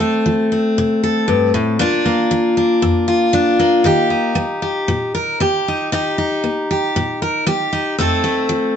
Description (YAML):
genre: country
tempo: 116 BPM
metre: 4/4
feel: straight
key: unclear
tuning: A4 = 440 Hz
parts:
  - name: picked steel-string acoustic guitar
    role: solo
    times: 0.0-8.8 s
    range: F2 to Bb4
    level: -14 LUFS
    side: left 1 dB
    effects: none
room: moderate studio reverb, RT60 0.7 s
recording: nothing above 8.0 kHz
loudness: -14 LUFS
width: side -8 dB against mid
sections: 0.0-8.8 A section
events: none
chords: 0.0 F; 1.8 Bb; 3.9 Eb; 8.0 F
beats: 0.24 0.76 1.27 | 1.79 2.30 2.82 3.33 | 3.85 4.37 4.88 5.40 | 5.91 6.43 6.95 7.46 | 7.98 8.50